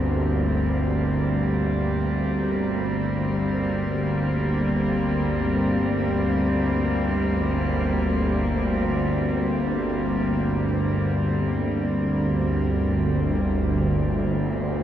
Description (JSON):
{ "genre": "dark ambient drone", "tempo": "free time", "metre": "none", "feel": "none", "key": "G minor", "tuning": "A4 = 440 Hz", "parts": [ { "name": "warm chamber cello section", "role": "sustained chords", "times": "0.0-14.8 s", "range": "G3 to C4", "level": "-24 LUFS", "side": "equal", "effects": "none" }, { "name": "bowed-like drone", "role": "drone", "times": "0.0-14.8 s", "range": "G1 to D2", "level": "-24 LUFS", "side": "equal", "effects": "built-in reverb" } ], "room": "wet huge ambient reverb, RT60 8.6 s", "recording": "none", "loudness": "-21 LUFS", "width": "side -10 dB against mid", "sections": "0.0-4.9 A section; 4.9-14.8 A section", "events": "none", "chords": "0.0 Gm" }